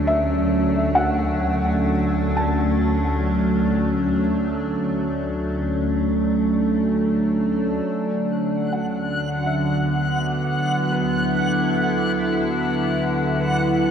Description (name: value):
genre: ambient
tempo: free time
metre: none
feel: none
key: D major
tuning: A4 = 439 Hz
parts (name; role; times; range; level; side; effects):
- evolving wavetable pad; sustained chords; 0.0-13.9 s; D3 to A4; -20 LUFS; equal; chorus, built-in reverb
- felt-muted upright piano; arpeggios; 0.0-13.9 s; B4 to A5; -26 LUFS; equal; diffuse ambient delay
- dark symphonic double bass section; bass; 0.0-13.9 s; D2; -28 LUFS; left 1 dB; none
- backwards swelling texture; texture; 8.6-13.9 s; F#5 to F#6; -26 LUFS; equal; built-in reverb
room: wet cathedral reverb, RT60 6.0 s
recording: dark, warm production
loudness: -19 LUFS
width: side -8 dB against mid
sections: 0.0-7.9 A section; 7.9-13.9 B section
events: fade-in on double bass section 7.9-13.9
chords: 0.0 D69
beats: free time